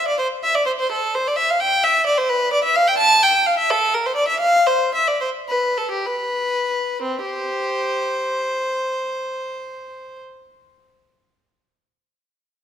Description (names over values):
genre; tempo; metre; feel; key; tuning
classical, baroque-style suite movement for unaccompanied violin; 58-88 BPM (dotted quarters); 6/8; rubato; C major; A4 = 438 Hz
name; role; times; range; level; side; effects
rich violin; solo; 0.0-10.2 s; C4 to A5; -18 LUFS; equal; none
room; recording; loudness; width
moderate recital hall reverb, RT60 1.7 s; none; -17 LUFS; side -9 dB against mid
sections
0.0-7.0 A section; 7.0-10.7 B section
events
slowing down 3.0-7.0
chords
none